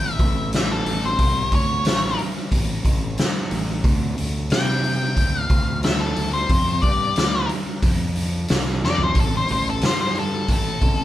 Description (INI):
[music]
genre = blues rock power trio and southern rock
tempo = 90 BPM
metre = 4/4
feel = straight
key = unclear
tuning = A4 = 439 Hz
[part]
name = octave-fuzz lead guitar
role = melody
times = 0.0-11.0 s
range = A4 to G5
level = -24 LUFS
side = left 3 dB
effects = distortion, slapback echo
[part]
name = fuzz fingered electric bass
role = bass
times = 0.0-11.0 s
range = A1 to C3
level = -25 LUFS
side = equal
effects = overdrive
[part]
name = raw garage drum kit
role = drums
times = 0.2-11.0 s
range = hi-hat, kick drum, snare drum, toms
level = -21 LUFS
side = equal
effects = none
[sound]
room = light reverb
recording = band playing live in one room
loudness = -18 LUFS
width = side -13 dB against mid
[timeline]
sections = 0.0-11.0 A section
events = lead electric guitar solo 0.0-11.0; drum fill 8.8-9.2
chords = 0.0 N.C.; 3.9 Csus2; 9.2 Am7